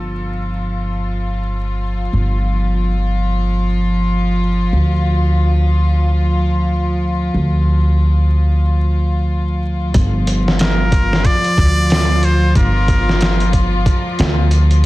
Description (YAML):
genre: trip hop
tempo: 92 BPM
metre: 4/4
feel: swing 59% on 16ths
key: G minor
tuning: A4 = 444 Hz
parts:
  - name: rich chamber string section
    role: sustained chords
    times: 0.0-14.9 s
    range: F3 to F4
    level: -21 LUFS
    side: left 1 dB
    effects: none
  - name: upright bass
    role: bass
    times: 0.0-14.9 s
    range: G1 to D2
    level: -15 LUFS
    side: equal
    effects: none
  - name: dusty soul sampler-style drum kit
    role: drums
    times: 9.9-14.8 s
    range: hi-hat, kick drum, snare drum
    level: -17 LUFS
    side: equal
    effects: none
  - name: trumpet with straight mute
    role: melody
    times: 10.6-13.5 s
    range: Bb4 to D5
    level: -22 LUFS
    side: equal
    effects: dub echo
room: small room reverb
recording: dense, heavily limited modern master, vinyl crackle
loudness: -13 LUFS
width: side -18 dB against mid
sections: 0.0-9.9 A section; 9.9-14.9 B section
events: none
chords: 0.0 Fsus2/G; 4.7 Dm; 9.9 Gm7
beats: 0.16 0.81 1.47 | 2.12 2.77 3.42 4.07 | 4.73 5.38 6.03 6.68 | 7.33 7.99 8.64 9.29 | 9.94 10.60 11.25 11.90 | 12.55 13.20 13.86 14.51